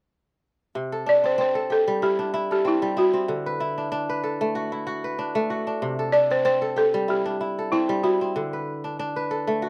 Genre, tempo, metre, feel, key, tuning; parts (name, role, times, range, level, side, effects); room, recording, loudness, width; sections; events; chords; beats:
west african traditional; 95 BPM; 4/4; swing 54% on 16ths; C lydian; A4 = 440 Hz
kora; arpeggios; 0.8-9.7 s; C3 to B4; -28 LUFS; equal; slapback echo
balafon; melody; 1.1-9.7 s; E4 to D5; -24 LUFS; equal; slapback echo
little or no reverb; recorded outdoors, with no room sound; -24 LUFS; mono
0.7-9.7 A section
0.7 C; 3.3 D; 5.8 C; 8.3 D
| 0.74 1.38 2.01 2.65 | 3.28 3.91 4.55 5.18 | 5.81 6.45 7.08 7.71 | 8.35 8.98 9.61